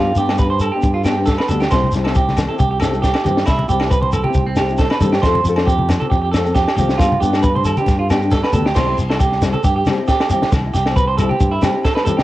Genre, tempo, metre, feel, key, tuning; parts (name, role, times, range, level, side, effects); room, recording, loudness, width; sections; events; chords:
highlife guitar band; 136 BPM; 4/4; swing 53% on 16ths; C major; A4 = 441 Hz
flamenco guitar; accompaniment; 0.0-12.2 s; F3 to A4; -24 LUFS; left 5 dB; cassette tape
clean electric guitar; arpeggios; 0.0-12.2 s; C4 to C5; -19 LUFS; right 4 dB; cassette tape, tape echo
fingered electric bass; bass; 0.0-11.6 s; C2 to G2; -20 LUFS; equal
shekere; percussion; 0.2-12.2 s; -23 LUFS; left 1 dB
compact cocktail drum kit; drums; 0.3-12.2 s; crash cymbal, kick drum, snare drum; -19 LUFS; equal; cassette tape
agogo bells; percussion; 0.3-12.1 s; -30 LUFS; left 3 dB
congas; percussion; 1.8-12.2 s; -24 LUFS; left 1 dB
light reverb, studio ambience; home recording on cassette; -14 LUFS; side -16 dB against mid
0.0-8.8 A section; 8.8-12.2 B section
0.0 G; 1.7 C; 5.2 F; 7.0 G; 8.8 C